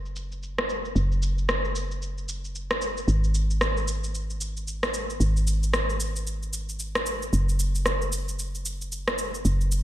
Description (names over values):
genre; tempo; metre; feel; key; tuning
organic downtempo; 113 BPM; 4/4; swing 60% on 16ths; unclear; A4 = 440 Hz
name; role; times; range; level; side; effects
woody FM bass; bass; 0.0-9.8 s; F#1 to G#1; -26 LUFS; equal; none
electronic cabasa and rim click; drums; 0.1-9.8 s; none; -28 LUFS; equal; low-pass filter on perc, low-pass filter on snare, low-pass filter on room
room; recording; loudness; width
little or no reverb; none; -24 LUFS; side -13 dB against mid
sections
0.0-9.8 A section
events
filter sweep on drum 0.0-9.8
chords
none